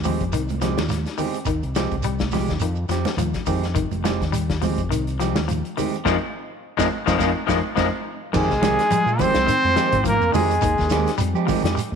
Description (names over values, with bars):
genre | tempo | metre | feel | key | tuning
afrobeat | 105 BPM | 4/4 | swing 55% on 16ths | F minor | A4 = 440 Hz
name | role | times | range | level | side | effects
electric guitar at the edge of break-up | stabs | 0.0-11.8 s | Eb3 to G4 | -28 LUFS | right 10 dB | none
fingered electric bass | bass | 0.0-12.0 s | F1 to F3 | -25 LUFS | equal | none
shekere | percussion | 0.0-11.9 s | none | -31 LUFS | right 6 dB | none
electric guitar at the edge of break-up | arpeggios | 0.1-11.8 s | Eb3 to Ab3 | -26 LUFS | left 11 dB | none
vintage drum kit | drums | 0.1-11.9 s | crash cymbal, hi-hat, kick drum, snare drum | -28 LUFS | left 4 dB | none
congas | percussion | 0.1-11.6 s | none | -30 LUFS | right 10 dB | none
breathy trumpet | melody | 8.3-11.2 s | Ab4 to C5 | -21 LUFS | equal | none
warm flugelhorn | second line | 8.3-11.2 s | Ab3 to C4 | -28 LUFS | left 10 dB | none
bright trombone | second line | 8.4-11.2 s | Ab3 to C4 | -27 LUFS | right 10 dB | none
room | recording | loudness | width
moderate echo chamber reverb, RT60 1.6 s, small room ambience | 1960s-style stereo with parts hard left and right | -19 LUFS | side -6 dB against mid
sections
0.0-8.3 A section; 8.3-12.0 B section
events
band accent 6.1-8.3; drum fill 7.8-8.3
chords
0.0 Fm9